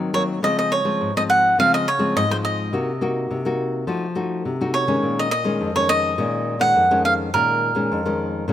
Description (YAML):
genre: samba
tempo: 104 BPM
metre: 4/4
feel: straight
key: Bb minor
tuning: A4 = 440 Hz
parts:
  - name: nylon-string guitar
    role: accompaniment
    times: 0.0-8.5 s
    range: F2 to Gb4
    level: -22 LUFS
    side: left 2 dB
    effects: none
  - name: cavaquinho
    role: melody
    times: 0.1-8.5 s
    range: Bb4 to Gb5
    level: -19 LUFS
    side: right 1 dB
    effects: none
room: light reverb, small room ambience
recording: rough home demo mix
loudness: -18 LUFS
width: side -11 dB against mid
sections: 0.0-8.5 A section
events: none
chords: 0.4 Dbmaj7; 2.7 Cm7b5; 3.9 F7b9; 5.0 Bbm7